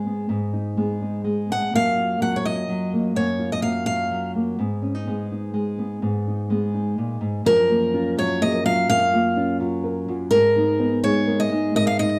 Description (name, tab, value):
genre	acoustic folk duo or small band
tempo	126 BPM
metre	3/4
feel	straight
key	F# major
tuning	A4 = 439 Hz
part	nylon-string guitar	accompaniment	0.0-12.2 s	F#2 to A#4	-26 LUFS	equal	none
part	picked steel-string acoustic guitar	melody	1.5-4.3, 7.5-12.2 s	A#4 to F#5	-23 LUFS	equal	slapback echo
part	felt-muted upright piano	arpeggios	7.5-12.2 s	E#3 to A#4	-26 LUFS	equal	none
room	moderate small room ambience, RT60 0.5 s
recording	dark, warm production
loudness	-22 LUFS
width	mono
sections	0.0-7.5 A section; 7.5-12.2 B section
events	none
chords	0.0 G#m; 1.7 F#maj7; 4.6 G#m; 7.5 F#maj7; 10.3 G#madd9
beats	| 0.29 0.77 1.25 | 1.72 2.20 2.68 | 3.16 3.64 4.11 | 4.59 5.07 5.55 | 6.03 6.50 6.98 | 7.46 7.93 8.41 | 8.89 9.37 9.84 | 10.32 10.79 11.27 | 11.75